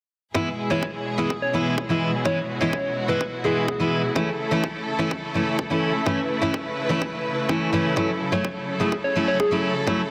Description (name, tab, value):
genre	EDM, festival progressive house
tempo	126 BPM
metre	4/4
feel	straight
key	E major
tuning	A4 = 440 Hz
part	fingerpicked steel-string acoustic guitar	accompaniment	0.3-10.0 s	E3 to E4	-26 LUFS	equal	sidechain pumping, dub echo
part	electronic kick drum	drums	0.3-10.0 s	none	-32 LUFS	equal	high-pass filter on kick
part	rich studio string section	sustained chords	0.4-10.1 s	B2 to B4	-30 LUFS	equal	sidechain pumping
part	soft struck synth lead	melody	0.7-4.1, 8.3-9.5 s	G#4 to C#5	-29 LUFS	equal	chorus, tape echo
room	moderate lush hall reverb, RT60 2.0 s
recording	dense, heavily limited modern master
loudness	-24 LUFS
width	mono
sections	0.4-10.1 A section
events	none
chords	0.4 E; 4.2 A; 8.0 F#m7